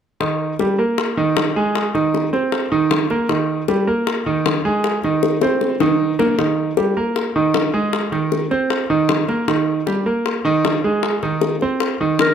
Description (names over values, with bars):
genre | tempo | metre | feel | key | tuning
Afro-Cuban jazz | 155 BPM | 4/4 | straight | Eb major | A4 = 440 Hz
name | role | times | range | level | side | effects
clear concert grand piano | accompaniment | 0.2-12.3 s | Eb3 to C5 | -18 LUFS | right 3 dB | none
bongos | percussion | 0.2-12.3 s | none | -21 LUFS | left 6 dB | none
growling clarinet | melody | 12.2-12.3 s | Bb4 | -14 LUFS | left 2 dB | none
room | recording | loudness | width
little or no reverb | close, detailed microphones | -16 LUFS | side -8 dB against mid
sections
0.2-12.3 A section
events
drum fill 5.4-6.4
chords
0.2 Eb; 1.7 Ab; 3.3 Eb; 4.8 Ab; 6.4 Eb; 7.9 Ab; 9.5 Eb; 11.0 Ab